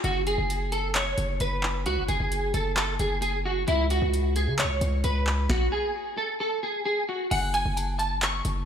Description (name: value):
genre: hip hop, trap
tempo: 132 BPM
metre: 4/4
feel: half-time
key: F# minor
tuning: A4 = 439 Hz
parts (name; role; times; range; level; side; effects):
- clean electric guitar; melody; 0.0-8.7 s; E4 to C#6; -27 LUFS; right 1 dB; ensemble chorus, ping-pong delay
- distorted 808-style bass; bass; 0.0-8.7 s; F#1 to C#3; -27 LUFS; equal; distortion
- booming analog drum machine; drums; 0.0-8.6 s; crash cymbal, handclaps, hi-hat, kick drum, snare drum; -30 LUFS; equal; none
- metallic FM bell; second line; 7.3-8.2 s; G#5 to A5; -34 LUFS; left 3 dB; chorus, ping-pong delay
room: light reverb, digital ambience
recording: played on a big sound system in a bare room, large studio reverb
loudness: -24 LUFS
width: side -8 dB against mid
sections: 0.0-7.3 A section; 7.3-8.7 B section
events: stop 5.5-7.3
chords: 0.0 F#sus2; 3.7 C#5; 7.3 F#madd9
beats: | 0.04 0.49 0.95 1.40 | 1.86 2.31 2.77 3.22 | 3.68 4.13 4.59 5.04 | 5.50 5.95 6.40 6.86 | 7.31 7.77 8.22